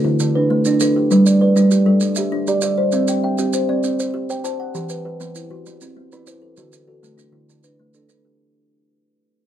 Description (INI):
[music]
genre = southern african traditional, mbira-style interlocking cycle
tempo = 132 BPM (dotted quarters)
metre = 12/8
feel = straight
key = unclear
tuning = A4 = 441 Hz
[part]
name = kalimba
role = arpeggios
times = 0.0-8.6 s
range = D3 to G5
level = -18 LUFS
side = left 1 dB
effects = none
[part]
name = kalimba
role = arpeggios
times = 0.0-8.6 s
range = D3 to A5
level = -19 LUFS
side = right 3 dB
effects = none
[part]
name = maracas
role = percussion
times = 0.2-8.2 s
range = none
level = -29 LUFS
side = right 8 dB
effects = none
[sound]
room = light reverb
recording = close, detailed microphones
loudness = -15 LUFS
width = side -10 dB against mid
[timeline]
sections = 0.0-8.4 A section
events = fade-out 0.0-8.4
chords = 0.0 D5; 1.1 G; 2.9 C; 4.7 Em; 6.6 D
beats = 0.20 0.65 | 1.11 1.56 2.02 2.47 | 2.92 3.38 3.83 4.29 | 4.75 5.20 5.66 6.11 | 6.57 7.03 7.48 7.94